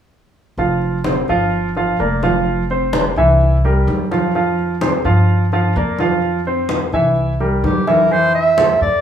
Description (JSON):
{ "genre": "latin, Cuban son and guajira", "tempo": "128 BPM", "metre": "4/4", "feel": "straight", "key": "F major", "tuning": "A4 = 439 Hz", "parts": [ { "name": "clear concert grand piano", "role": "arpeggios", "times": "0.6-9.0 s", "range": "E3 to F5", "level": "-17 LUFS", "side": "right 1 dB", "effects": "none" }, { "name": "upright bass", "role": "bass", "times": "0.6-9.0 s", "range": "F1 to G2", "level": "-19 LUFS", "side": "equal", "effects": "none" }, { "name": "congas", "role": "percussion", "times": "0.6-9.0 s", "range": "none", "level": "-22 LUFS", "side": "equal", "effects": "none" }, { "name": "clear clarinet", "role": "melody", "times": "7.7-9.0 s", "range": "G4 to E5", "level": "-15 LUFS", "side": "right 3 dB", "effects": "none" } ], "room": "wet studio reverb, RT60 0.8 s", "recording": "band playing live in one room, small room ambience", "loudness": "-14 LUFS", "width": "side -9 dB against mid", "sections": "0.6-8.1 A section", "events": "none", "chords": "0.6 Fsus2; 1.5 Gm7; 2.5 F5; 3.4 C7; 4.3 Fsus2; 5.3 Gm7; 6.2 F5; 7.2 C7; 8.1 Fmaj7" }